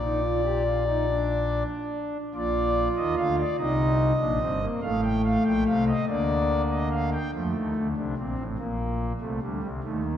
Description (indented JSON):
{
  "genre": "classical, baroque-style 3-part fugue for pipe organ",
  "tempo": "48 BPM (dotted quarters)",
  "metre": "6/8",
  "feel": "straight",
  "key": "Bb major",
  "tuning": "A4 = 440 Hz",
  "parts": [
    { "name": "pipe organ, foundations", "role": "solo", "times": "0.0-10.2 s", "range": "G1 to G5", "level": "-24 LUFS", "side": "equal", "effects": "none" }
  ],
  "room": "wet concert hall reverb, RT60 2.3 s",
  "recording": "none",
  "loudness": "-24 LUFS",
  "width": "side -10 dB against mid",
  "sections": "0.0-2.4 A section; 2.4-7.3 B section; 7.3-10.2 A section",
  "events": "none",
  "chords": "0.0 Bb; 3.6 Cm7; 4.8 F/A; 6.1 Bb/D; 7.3 Dm; 8.6 Gm/Bb"
}